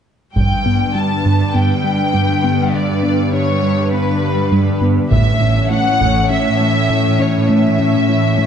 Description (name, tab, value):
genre	cinematic, hybrid orchestral and electronic film score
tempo	101 BPM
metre	4/4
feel	straight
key	unclear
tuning	A4 = 440 Hz
part	warm symphonic violin section	melody	0.4-8.5 s	B4 to A5	-19 LUFS	left 2 dB	none
part	airy breathy pad	sustained chords	0.4-8.5 s	D3 to C#5	-19 LUFS	left 1 dB	chorus
part	harp-like synth pluck	arpeggios	0.4-8.5 s	G3 to E4	-21 LUFS	left 1 dB	chorus
part	smooth synth bass	riff	0.4-8.5 s	G2 to A3	-20 LUFS	right 2 dB	none
part	clear chamber cello section	bass	0.4-8.5 s	G2 to A2	-20 LUFS	right 2 dB	none
part	taiko ensemble	drums	0.4-1.5, 5.1-6.3 s	none	-20 LUFS	equal	none
room	wet scoring stage reverb, RT60 1.7 s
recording	nothing above 10.5 kHz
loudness	-13 LUFS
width	side -8 dB against mid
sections	0.4-8.5 A section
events	none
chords	0.4 G; 5.1 A